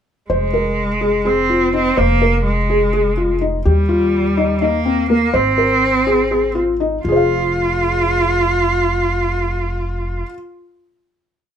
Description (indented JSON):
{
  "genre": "contemporary instrumental, chamber music in an uneven meter",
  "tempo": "248 BPM (eighths)",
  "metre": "7/8",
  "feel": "straight",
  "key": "F minor",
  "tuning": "A4 = 440 Hz",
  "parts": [
    { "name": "bright cello", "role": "melody", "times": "0.3-10.2 s", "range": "G3 to F4", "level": "-18 LUFS", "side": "right 2 dB", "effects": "none" },
    { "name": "felt-muted upright piano", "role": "arpeggios", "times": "0.3-10.3 s", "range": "Bb3 to F5", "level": "-18 LUFS", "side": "left 2 dB", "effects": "none" },
    { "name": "upright bass", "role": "bass", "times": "0.3-10.2 s", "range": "F1 to Eb2", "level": "-21 LUFS", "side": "equal", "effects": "none" }
  ],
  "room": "light reverb",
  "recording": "minimal, uncompressed stereo recording",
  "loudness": "-14 LUFS",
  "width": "side -8 dB against mid",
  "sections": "0.3-7.0 A section; 7.0-10.5 final chord",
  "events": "none",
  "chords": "0.3 Fm; 3.7 Eb; 5.3 Ab; 7.0 Fm",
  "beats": "| 0.30 0.54 0.78 1.02 1.26 1.50 1.74 | 1.98 2.21 2.45 2.69 2.93 3.17 3.41 | 3.65 3.89 4.13 4.37 4.61 4.85 5.09 | 5.33 5.58 5.82 6.06 6.30 6.55 6.79 | 7.04 7.29 7.53 7.78 8.02 8.27 8.52 | 8.76 9.01 9.25 9.50 9.75 9.99 10.24"
}